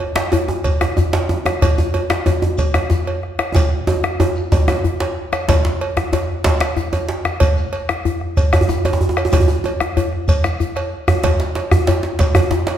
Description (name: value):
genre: west african traditional, West African drum ensemble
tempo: 125 BPM (dotted quarters)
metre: 12/8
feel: straight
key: none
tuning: none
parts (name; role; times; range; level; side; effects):
- cowbell; percussion; 0.0-12.8 s; none; -24 LUFS; right 3 dB; none
- bombo; percussion; 0.2-12.5 s; none; -20 LUFS; equal; none
- djembe; percussion; 0.2-12.8 s; none; -22 LUFS; left 4 dB; none
- djembe; percussion; 0.2-12.8 s; none; -18 LUFS; right 2 dB; none
- shekere; percussion; 0.2-12.3 s; none; -27 LUFS; left 2 dB; none
room: wet recital hall reverb, RT60 1.3 s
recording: none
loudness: -15 LUFS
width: side -10 dB against mid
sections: 0.0-5.5 A section; 5.5-12.8 B section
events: drum fill 3.6-5.5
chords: none